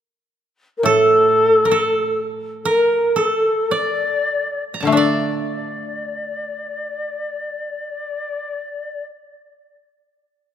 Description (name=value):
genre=japanese traditional, Japanese chamber music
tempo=44-72 BPM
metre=2/4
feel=rubato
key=D hirajoshi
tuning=A4 = 440 Hz
part: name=bright reedy long shakuhachi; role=melody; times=0.8-9.1 s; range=A4 to D5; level=-19 LUFS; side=left 1 dB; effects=none
part: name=koto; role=accompaniment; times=0.8-9.1 s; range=A2 to D4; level=-22 LUFS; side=left 2 dB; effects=none
part: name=koto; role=second line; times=0.9-9.1 s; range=A4 to Bb5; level=-21 LUFS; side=right 5 dB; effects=none
room=moderate concert hall reverb, RT60 2.4 s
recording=none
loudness=-17 LUFS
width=side -10 dB against mid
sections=0.0-4.9 A section; 4.9-10.2 B section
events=slowing down 0.9-4.9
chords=none